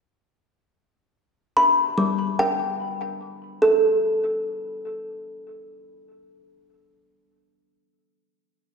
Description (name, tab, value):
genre	ambient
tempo	73 BPM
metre	4/4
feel	straight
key	unclear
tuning	A4 = 438 Hz
part	kalimba	solo	1.6-7.5 s	G3 to B5	-20 LUFS	equal	tape echo
room	wet concert hall reverb, RT60 1.9 s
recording	dark, warm production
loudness	-20 LUFS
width	side -5 dB against mid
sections	0.0-3.6 A section; 3.6-6.9 B section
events	none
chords	0.0 G; 3.6 N.C.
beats	| 0.33 1.15 1.97 2.79 | 3.62 4.44 5.26 6.08